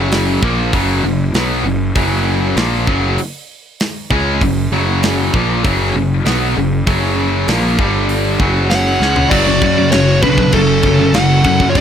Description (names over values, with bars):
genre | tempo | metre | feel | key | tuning
heavy metal | 98 BPM | 4/4 | straight | unclear | A4 = 440 Hz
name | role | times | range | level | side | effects
tight distorted guitar | riff | 0.0-11.8 s | F#2 to C#4 | -18 LUFS | left 13 dB | distortion
tight distorted guitar | riff | 0.0-11.8 s | F#2 to C#4 | -18 LUFS | right 10 dB | distortion
fuzz picked electric bass | bass | 0.0-11.8 s | F#1 to F#2 | -18 LUFS | equal | overdrive
tight metal drum kit | drums | 0.1-11.8 s | crash cymbal, hi-hat, kick drum, snare drum, toms | -20 LUFS | equal | none
high-gain lead guitar | melody | 8.7-11.8 s | A4 to F#5 | -15 LUFS | left 1 dB | distortion
high-gain lead guitar | second line | 8.7-11.8 s | C#4 to C#5 | -22 LUFS | right 3 dB | distortion, digital delay
tight distorted guitar | riff | 9.3-11.8 s | F#2 to F#3 | -20 LUFS | right 1 dB | distortion
room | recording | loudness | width
little or no reverb | none | -12 LUFS | side -8 dB against mid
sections
0.0-9.3 A section; 9.3-11.8 B section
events
drum fill 9.0-9.3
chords
0.0 F#5; 7.8 G5; 8.4 F#5; 9.3 F#m